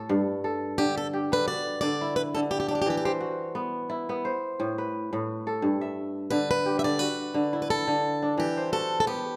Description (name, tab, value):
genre	west african traditional, West African string and xylophone music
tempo	87 BPM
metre	4/4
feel	swing 55% on 16ths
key	G major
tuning	A4 = 441 Hz
part	kora	arpeggios	0.0-9.4 s	G2 to E5	-30 LUFS	equal	none
part	picked plugged-in swing-style acoustic guitar	melody	0.8-9.4 s	G4 to E5	-30 LUFS	equal	none
room	moderate recital hall reverb, RT60 1.6 s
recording	none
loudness	-28 LUFS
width	mono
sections	0.1-9.4 A section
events	none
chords	0.1 G5; 1.5 D; 2.9 E5; 4.2 Am; 5.6 G5; 7.0 D; 8.4 E5